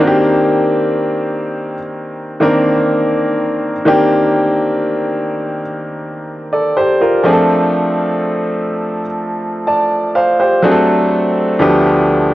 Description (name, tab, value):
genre	R&B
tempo	62 BPM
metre	4/4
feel	straight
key	C dorian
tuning	A4 = 440 Hz
part	clear baby grand piano	solo	0.0-12.3 s	D2 to A5	-12 LUFS	equal	cassette tape
room	moderate spring reverb, RT60 1.8 s, small room ambience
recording	home recording on cassette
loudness	-12 LUFS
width	side -15 dB against mid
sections	0.0-12.3 A section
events	none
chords	0.0 Cm7; 7.2 Dm7; 10.6 D7; 11.6 G7/D